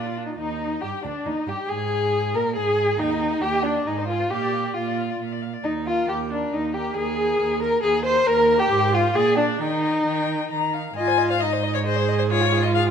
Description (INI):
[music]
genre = quick classical-period movement for string quartet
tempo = 136 BPM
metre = 3/4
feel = straight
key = Eb major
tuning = A4 = 440 Hz
[part]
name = rich violin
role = melody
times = 0.0-12.8 s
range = D4 to Bb5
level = -29 LUFS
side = left 9 dB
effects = none
[part]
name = dark violin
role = second line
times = 0.0-12.9 s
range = D4 to Eb5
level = -23 LUFS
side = left 2 dB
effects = none
[part]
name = clear viola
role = accompaniment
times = 0.0-12.9 s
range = D4 to C5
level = -27 LUFS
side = right 3 dB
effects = none
[part]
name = rich cello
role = bass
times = 0.0-12.9 s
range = D2 to Eb3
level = -28 LUFS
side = right 7 dB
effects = none
[sound]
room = moderate recital hall reverb, RT60 1.7 s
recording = minimal, uncompressed stereo recording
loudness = -20 LUFS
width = side -7 dB against mid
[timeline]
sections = 0.4-11.0 A section; 11.0-12.9 B section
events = none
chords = 0.4 Eb; 1.7 Absus2; 3.0 Eb; 3.9 Fm/Ab; 4.3 Bb; 5.6 Eb5; 8.7 Fm/Ab; 9.2 Bb7; 9.6 Eb; 11.0 Ab; 12.3 Db/Ab